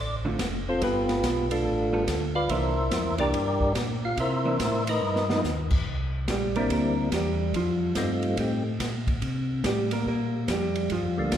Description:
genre	soul jazz organ trio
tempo	143 BPM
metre	4/4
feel	swing 65% on 8ths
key	C mixolydian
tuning	A4 = 441 Hz
part	percussive tonewheel organ	melody	0.0-8.6, 11.2-11.4 s	G3 to F5	-27 LUFS	equal	slow rotary speaker, overdrive, chorus vibrato
part	mellow tonewheel organ	bass	0.0-11.4 s	F1 to C3	-30 LUFS	equal	chorus vibrato, slow rotary speaker
part	vintage hollow-body jazz guitar	accompaniment	0.2-11.3 s	D3 to Bb4	-30 LUFS	right 2 dB	none
part	open jazz drum kit	drums	0.4-11.4 s	crash cymbal, hi-hat, kick drum, ride cymbal, snare drum	-31 LUFS	equal	none
room	wet concert hall reverb, RT60 1.8 s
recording	recorded in a church or concert hall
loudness	-24 LUFS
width	side -10 dB against mid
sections	0.0-5.9 A section; 5.9-11.4 A section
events	tonewheel organ solo 0.0-5.9; drum fill 5.0-5.4; hollow-body jazz guitar solo 5.9-11.4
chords	0.0 Dm7; 0.8 G9; 2.5 C9; 5.0 G7alt; 5.9 C9; 7.5 F9; 9.2 C5

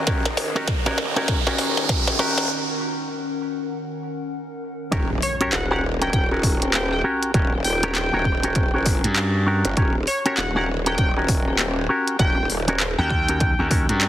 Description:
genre	glitch hop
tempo	99 BPM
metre	4/4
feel	swing 61% on 16ths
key	Eb minor pentatonic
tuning	A4 = 437 Hz
part	warbly tape-like pad	sustained chords	0.0-4.9 s	Eb3 to F#5	-31 LUFS	left 2 dB	chorus, built-in reverb, phaser, vintage 12-bit sampler grit, sidechain pumping
part	electric guitar with an envelope filter	stabs	0.0-14.1 s	Db4 to Bb4	-25 LUFS	equal	sidechain pumping, ping-pong delay
part	growl bass	bass	0.0-13.0 s	Eb1 to Db2	-25 LUFS	equal	chorus, high-pass filter
part	riser and impact	sound effects	0.0-7.3 s	none	-28 LUFS	right 2 dB	none
part	dark studio string section	texture	0.0-2.5 s	Eb4 to Eb5	-37 LUFS	equal	none
part	electronic kick drum	drums	0.1-13.9 s	none	-22 LUFS	equal	none
part	glitchy drum kit	drums	0.1-14.1 s	handclaps, hi-hat, rim click, snare drum	-26 LUFS	equal	high-pass filter on snare, high-pass filter on hats, high-pass filter on room
part	sync lead	melody	5.2-13.7 s	Db5 to G5	-27 LUFS	equal	chorus, cassette tape, ping-pong delay
part	gritty slap bass	bass	9.0-14.1 s	Eb2 to G2	-22 LUFS	equal	overdrive
room	light reverb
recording	heavily compressed radio sound, multiband compression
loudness	-19 LUFS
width	side -12 dB against mid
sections	0.0-4.9 A section; 4.9-14.1 B section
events	build-up 0.0-4.9; drum fill 0.0-2.5; riser 0.0-2.5; filter sweep on clean electric guitar 0.0-4.9; filter sweep on ambient pad 0.0-4.9; break 2.5-4.9; drop 4.9-14.1; impact 4.9-7.3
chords	0.0 Eb7#9

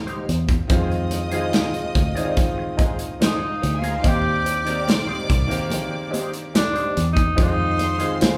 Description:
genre	lush 1970s-style soul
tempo	72 BPM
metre	4/4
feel	straight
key	Eb major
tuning	A4 = 440 Hz
part	bright studio violin section	second line	0.0-8.4 s	D4 to F6	-35 LUFS	equal	none
part	clear grand piano	accompaniment	0.0-8.4 s	Eb3 to G4	-30 LUFS	equal	none
part	electric guitar through a small old amp	riff	0.1-8.4 s	Eb4 to D5	-34 LUFS	equal	wah
part	modern studio drum kit	drums	0.1-8.4 s	hi-hat, kick drum, snare drum	-24 LUFS	equal	none
part	fingered electric bass	bass	0.3-8.4 s	C2 to F2	-27 LUFS	equal	none
part	congas	percussion	0.5-8.4 s	none	-37 LUFS	equal	none
part	warm tenor saxophone	melody	3.3-8.2 s	D4 to G4	-26 LUFS	equal	none
room	moderate large studio reverb, RT60 1.1 s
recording	band playing live in one room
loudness	-21 LUFS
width	mono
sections	0.0-8.4 A section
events	tenor saxophone solo 0.0-8.4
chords	0.0 Eb6; 0.7 Fm7; 4.0 Eb6; 7.4 Fm7

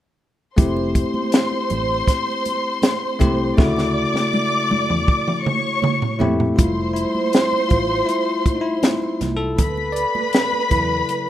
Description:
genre	lush 1970s-style soul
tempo	80 BPM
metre	4/4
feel	straight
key	unclear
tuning	A4 = 438 Hz
part	warm studio string section	second line	0.6-11.3 s	B4 to D6	-22 LUFS	equal	none
part	bell-like tine electric piano	accompaniment	0.6-11.3 s	C#3 to D5	-23 LUFS	left 2 dB	none
part	vintage muted fingered electric bass	bass	0.6-11.0 s	F1 to F2	-26 LUFS	equal	none
part	compact cocktail drum kit	drums	0.6-11.3 s	hi-hat, kick drum, snare drum, toms	-19 LUFS	equal	none
part	congas	percussion	0.6-11.3 s	none	-31 LUFS	right 6 dB	none
room	light reverb, studio ambience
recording	rough home demo mix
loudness	-17 LUFS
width	side -12 dB against mid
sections	0.6-6.6 A section; 6.6-11.3 B section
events	drum fill 3.6-6.6; tine electric piano solo 6.6-11.3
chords	0.6 Fmaj7; 3.6 Dmaj9; 6.2 Fmaj7; 9.6 Dmaj9

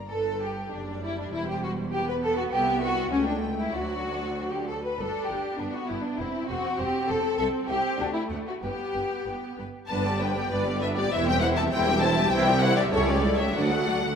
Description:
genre	quick classical-period movement for string orchestra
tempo	99 BPM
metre	2/4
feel	rubato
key	G major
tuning	A4 = 440 Hz
part	clear symphonic violin section	melody	0.0-14.2 s	B4 to Bb5	-31 LUFS	left 5 dB	none
part	clear symphonic violin section	second line	0.1-14.2 s	C#4 to F#5	-28 LUFS	left 1 dB	none
part	rich symphonic cello section	bass	0.1-14.1 s	C2 to G2	-34 LUFS	right 2 dB	none
part	rich symphonic double bass section	bass	0.1-14.1 s	E1 to D2	-32 LUFS	right 3 dB	none
part	clear symphonic viola section	accompaniment	0.7-14.2 s	E3 to F#4	-31 LUFS	right 2 dB	none
room	moderate concert hall reverb, RT60 2.0 s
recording	none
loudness	-24 LUFS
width	side -7 dB against mid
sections	0.1-9.9 A section; 9.9-14.2 A section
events	none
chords	0.1 G; 1.3 C/E; 2.5 C; 3.1 A7/C#; 3.7 D; 5.0 G; 6.2 C/E; 7.4 C5; 8.0 D; 8.6 G; 11.1 C/E; 12.3 C; 12.9 A7/C#; 13.5 D

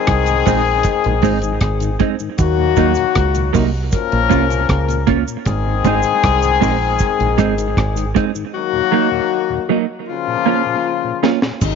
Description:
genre	roots reggae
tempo	78 BPM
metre	4/4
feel	straight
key	unclear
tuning	A4 = 440 Hz
part	warm horn section	second line	0.0-11.8 s	C3 to Bb4	-18 LUFS	left 10 dB	tape echo
part	deep dub fingered electric bass	bass	0.1-11.8 s	Ab1 to Eb2	-19 LUFS	right 1 dB	none
part	deep reggae drum kit	drums	0.1-11.8 s	crash cymbal, hi-hat, kick drum, rim click, snare drum	-20 LUFS	right 1 dB	none
part	mellow tonewheel organ	accompaniment	0.3-11.5 s	Eb2 to Eb4	-27 LUFS	left 9 dB	overdrive, chorus vibrato, slow rotary speaker
part	cabasa	percussion	0.3-11.8 s	none	-35 LUFS	right 15 dB	none
part	clean electric guitar	accompaniment	0.5-11.4 s	Gb3 to F4	-20 LUFS	right 15 dB	lush chorus, tape echo
room	light reverb, small room reverb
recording	1960s-style stereo with parts hard left and right, nothing above 7.5 kHz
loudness	-14 LUFS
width	side -6 dB against mid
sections	0.0-11.6 A section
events	drum fill 10.1-11.6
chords	0.0 Ab; 2.4 Ebm; 3.9 Bbm; 5.5 Ab; 8.5 Ebm; 10.1 Bbm

